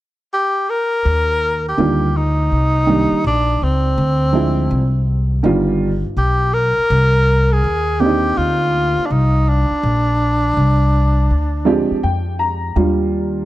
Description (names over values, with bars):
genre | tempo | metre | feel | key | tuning
hip hop, jazz-hop | 82 BPM | 4/4 | swing 66% on 16ths | Eb major | A4 = 440 Hz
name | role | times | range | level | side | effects
breathy tenor saxophone | melody | 0.3-12.0 s | C4 to Bb4 | -18 LUFS | equal | none
upright bass | bass | 1.1-13.5 s | G1 to F2 | -17 LUFS | equal | none
dark upright piano | accompaniment | 1.8-13.5 s | D3 to Bb5 | -18 LUFS | right 2 dB | none
room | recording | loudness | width
light reverb, studio reverb | dark, warm production | -14 LUFS | side -15 dB against mid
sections
0.0-1.1 A section; 1.1-12.8 B section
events
upright piano fill 11.3-12.8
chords
0.0 N.C.; 1.1 Ebmaj7; 4.0 Dm7b5; 5.4 G7b13; 6.9 Cm9; 9.8 Bb69; 12.8 Ebmaj9